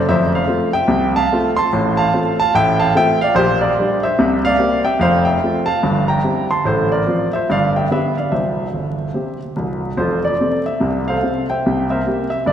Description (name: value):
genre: jazz, stride piano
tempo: 145 BPM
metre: 4/4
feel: swing 60% on 8ths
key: F major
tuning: A4 = 440 Hz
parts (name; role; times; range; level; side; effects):
- clear grand piano; solo; 0.0-12.5 s; C1 to C6; -15 LUFS; equal; none
room: wet church reverb, RT60 2.8 s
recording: recorded in a church or concert hall, vinyl crackle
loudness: -15 LUFS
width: side -9 dB against mid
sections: 0.0-10.0 A section; 10.0-12.5 A section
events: none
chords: 0.1 F; 1.7 F/A; 3.4 Gm/Bb; 4.2 C7; 5.0 F; 5.8 C7/G; 6.7 F/A; 7.5 G; 8.3 C; 10.0 F; 11.6 C7